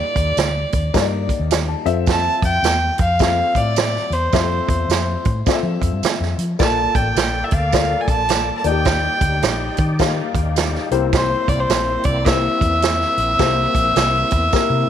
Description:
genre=uptempo 1960s-style soul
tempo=106 BPM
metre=4/4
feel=swing 62% on 8ths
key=F major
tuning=A4 = 438 Hz
part: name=rich fiddle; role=melody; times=0.0-14.9 s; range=C5 to A5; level=-20 LUFS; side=equal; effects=slapback echo
part: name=dark upright piano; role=accompaniment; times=0.0-14.9 s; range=Bb3 to A5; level=-24 LUFS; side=left 12 dB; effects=none
part: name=vintage muted fingered electric bass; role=bass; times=0.2-14.8 s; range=A1 to F3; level=-22 LUFS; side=left 1 dB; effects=none
part: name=swinging big-band drum kit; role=drums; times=0.2-14.7 s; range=hi-hat, kick drum, snare drum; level=-20 LUFS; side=right 3 dB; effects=none
part: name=tambourine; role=percussion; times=0.4-14.7 s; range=none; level=-32 LUFS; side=right 14 dB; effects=none
part: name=overdriven tonewheel organ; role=sustained chords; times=6.6-14.9 s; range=Bb3 to D5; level=-27 LUFS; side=left 1 dB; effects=fast rotary speaker, chorus vibrato
room=light reverb, small room ambience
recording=1960s-style stereo with parts hard left and right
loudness=-16 LUFS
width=side -9 dB against mid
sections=0.0-14.9 A section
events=upright piano fill 1.2-2.1; drum fill 14.5-14.9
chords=0.0 Ebmaj7; 1.8 Fmaj7; 6.6 Bbmaj7; 8.6 Ebmaj7; 10.8 C7

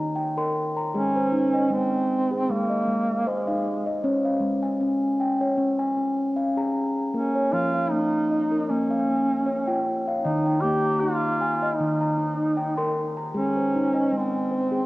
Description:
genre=world meditative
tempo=77 BPM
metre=4/4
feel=swing 54% on 16ths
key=unclear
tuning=A4 = 435 Hz
part: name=steel tongue drum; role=arpeggios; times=0.0-14.9 s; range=Eb3 to C6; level=-24 LUFS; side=left 1 dB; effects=cassette tape, analog delay
part: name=mellow duduk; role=melody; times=1.0-14.9 s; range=Ab3 to G4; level=-24 LUFS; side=right 1 dB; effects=cassette tape, analog delay
room=wet spring reverb, RT60 2.7 s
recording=home recording on cassette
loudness=-22 LUFS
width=side -19 dB against mid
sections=0.0-14.9 A section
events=none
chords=0.0 Eb; 0.9 Ab; 4.0 Db; 7.1 Bbm; 10.2 Eb; 13.4 Ab

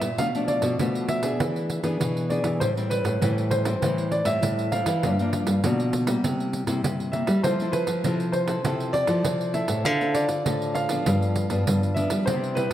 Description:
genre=samba and choro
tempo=99 BPM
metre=4/4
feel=straight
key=unclear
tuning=A4 = 439 Hz
part: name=warm baby grand piano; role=melody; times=0.0-12.7 s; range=B4 to F5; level=-28 LUFS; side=right 1 dB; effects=tape echo
part: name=nylon-string guitar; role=accompaniment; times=0.0-12.7 s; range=G2 to A4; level=-29 LUFS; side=left 3 dB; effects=none
part: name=nylon-string guitar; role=bass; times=0.0-12.7 s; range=G2 to G3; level=-26 LUFS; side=equal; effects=none
part: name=pandeiro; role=percussion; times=0.0-12.7 s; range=none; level=-30 LUFS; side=right 3 dB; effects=none
room=moderate plate reverb, RT60 2.8 s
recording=dreamy mix soaked in reverb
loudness=-22 LUFS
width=side -12 dB against mid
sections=0.0-12.7 A section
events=none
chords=0.2 Bm7b5; 1.4 E7; 2.6 Am7; 5.0 Gm7; 6.2 C7; 7.4 Fmaj7; 9.9 Dm7; 11.1 G7

